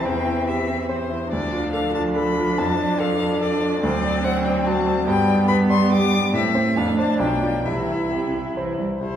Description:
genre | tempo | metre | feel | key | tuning
quick classical-period movement for piano quartet | 142 BPM | 3/4 | rubato | C major | A4 = 444 Hz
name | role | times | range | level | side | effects
clear violin | melody | 0.0-9.2 s | C5 to D6 | -26 LUFS | left 6 dB | none
rich cello | second line | 0.0-8.9 s | C3 to A3 | -24 LUFS | right 3 dB | none
bright concert grand piano | accompaniment | 0.0-9.2 s | B1 to D5 | -23 LUFS | equal | none
rich viola | accompaniment | 0.0-9.2 s | B3 to E4 | -26 LUFS | right 1 dB | none
room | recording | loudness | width
wet recital hall reverb, RT60 1.6 s | heard from further back in the room | -18 LUFS | side -9 dB against mid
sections
0.0-9.0 A section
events
none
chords
0.1 C/E; 1.3 Dm; 2.6 Dm/F; 3.8 D7; 5.1 G; 6.3 Am; 6.8 Dm7/F; 7.2 G7/B; 7.6 C

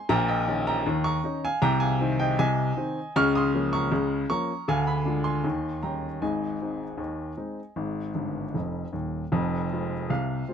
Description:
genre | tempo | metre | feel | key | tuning
ragtime piano | 78 BPM | 2/4 | straight | Ab major | A4 = 440 Hz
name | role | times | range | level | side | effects
warm upright piano | solo | 0.0-10.5 s | Eb1 to F6 | -24 LUFS | equal | none
room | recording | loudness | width
moderate studio reverb, RT60 0.6 s | dark, warm production | -24 LUFS | side -7 dB against mid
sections
0.0-9.3 A section; 9.3-10.5 B section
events
upright piano fill 8.2-9.3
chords
0.1 Eb7/Bb; 1.6 Ab/C; 3.1 Bbm/Db; 4.7 Ddim7; 5.4 Eb7; 6.2 Ab; 9.3 Fm

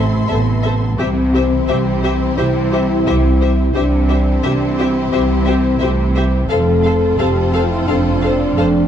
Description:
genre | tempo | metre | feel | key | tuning
cinematic, epic orchestral film score | 87 BPM | 4/4 | straight | unclear | A4 = 436 Hz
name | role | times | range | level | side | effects
rich symphonic violin section | melody | 0.0-8.7 s | E5 to F5 | -29 LUFS | left 5 dB | none
rich symphonic violin section | second line | 0.0-8.7 s | C5 | -26 LUFS | left 9 dB | none
warm symphonic viola section | accompaniment | 0.0-8.7 s | G4 to A4 | -25 LUFS | equal | none
dark French horn section | sustained chords | 0.0-8.9 s | A3 to A4 | -19 LUFS | left 2 dB | none
rich symphonic string section | sustained chords | 0.0-8.9 s | A3 to C6 | -26 LUFS | left 1 dB | none
warm trombone section | sustained chords | 0.0-8.9 s | C3 to C4 | -24 LUFS | right 1 dB | none
rich symphonic cello section | bass | 0.0-8.9 s | F2 to C3 | -21 LUFS | right 2 dB | none
rich symphonic double bass section | bass | 0.0-8.9 s | F1 to C2 | -18 LUFS | right 1 dB | none
room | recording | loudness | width
moderate scoring stage reverb, RT60 1.6 s | dark, warm production | -13 LUFS | side -9 dB against mid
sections
0.0-8.9 A section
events
none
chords
0.0 Am; 1.0 C; 6.5 F

